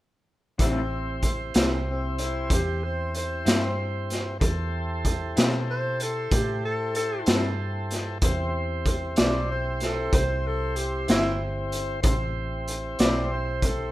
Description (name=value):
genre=slow blues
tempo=63 BPM (dotted quarters)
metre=12/8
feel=straight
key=A minor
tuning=A4 = 442 Hz
part: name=mellow tenor saxophone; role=melody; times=0.6-13.9 s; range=C4 to D5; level=-30 LUFS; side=equal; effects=none
part: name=electric guitar through a small old amp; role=accompaniment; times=0.6-13.2 s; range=A2 to E4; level=-29 LUFS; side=left 3 dB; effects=tremolo
part: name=tonewheel organ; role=sustained chords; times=0.6-13.9 s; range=C4 to C5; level=-32 LUFS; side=equal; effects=slow rotary speaker
part: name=vintage muted fingered electric bass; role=bass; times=0.6-13.9 s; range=G1 to B2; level=-30 LUFS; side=equal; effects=none
part: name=raw garage drum kit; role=drums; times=0.6-13.8 s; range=hi-hat, kick drum, snare drum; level=-24 LUFS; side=equal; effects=none
room=studio reverb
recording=rough home demo mix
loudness=-23 LUFS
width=side -16 dB against mid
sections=0.6-13.9 A section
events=none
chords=0.6 Am7